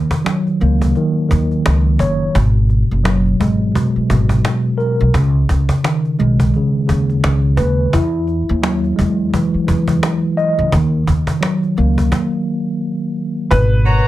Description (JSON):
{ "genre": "hip hop, boom-bap hip-hop", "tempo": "86 BPM", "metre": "4/4", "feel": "swing 59% on 16ths", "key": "G# minor", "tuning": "A4 = 440 Hz", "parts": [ { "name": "mellow tine electric piano", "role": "accompaniment", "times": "0.0-14.1 s", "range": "B2 to D#5", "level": "-16 LUFS", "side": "equal", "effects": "medium stereo tremolo" }, { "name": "upright bass", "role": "bass", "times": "0.0-14.0 s", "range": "F#1 to E2", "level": "-16 LUFS", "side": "equal", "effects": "none" }, { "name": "cajon", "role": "drums", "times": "0.1-14.0 s", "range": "none", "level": "-21 LUFS", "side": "equal", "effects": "none" }, { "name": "warm upright piano", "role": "melody", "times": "13.5-14.1 s", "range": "B4", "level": "-19 LUFS", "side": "left 1 dB", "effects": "ping-pong delay" }, { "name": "clear horn section", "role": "stabs", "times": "13.9-14.1 s", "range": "F#4 to A#5", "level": "-18 LUFS", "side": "right 1 dB", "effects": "none" } ], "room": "light reverb", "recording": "none", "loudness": "-13 LUFS", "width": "side -15 dB against mid", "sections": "0.0-13.5 A section", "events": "stop 12.1-13.5", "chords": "0.0 D#m7; 2.4 G#m9; 5.1 C#sus2; 7.9 Emaj9; 10.7 D#m; 13.5 G#m9", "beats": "0.26 0.95 1.65 | 2.35 3.05 3.75 4.44 | 5.14 5.84 6.54 7.23 | 7.93 8.63 9.33 10.02 | 10.72 11.42 12.12 12.81 | 13.51" }